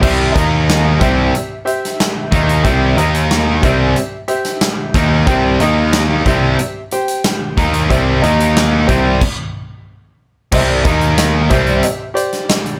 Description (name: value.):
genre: classic rock.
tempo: 92 BPM.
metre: 4/4.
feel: straight.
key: unclear.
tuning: A4 = 437 Hz.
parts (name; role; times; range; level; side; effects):
clear upright piano; accompaniment; 0.0-12.8 s; Eb4 to G5; -22 LUFS; equal; none.
distorted electric guitar; riff; 0.0-11.8 s; C3 to Eb4; -21 LUFS; equal; distortion.
sludgy distorted guitar; riff; 0.0-11.8 s; C3 to Eb4; -20 LUFS; equal; overdrive.
fuzz picked electric bass; bass; 0.0-11.8 s; C2 to Eb2; -19 LUFS; equal; overdrive.
big rock drum kit; drums; 0.0-12.8 s; crash cymbal, hi-hat, kick drum, snare drum; -20 LUFS; equal; none.
cowbell; percussion; 10.5-12.6 s; none; -26 LUFS; equal; none.
room: light reverb.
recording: none.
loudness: -14 LUFS.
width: mono.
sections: 0.0-10.5 A section; 10.5-12.8 A section.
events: stop 9.2-10.5.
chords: 0.0 C; 0.4 Eb5; 1.0 C; 3.0 Eb5; 3.6 C; 5.6 Eb5; 6.3 C; 8.2 Eb5; 8.9 C; 9.9 N.C.; 10.5 C; 10.9 Eb5; 11.5 C.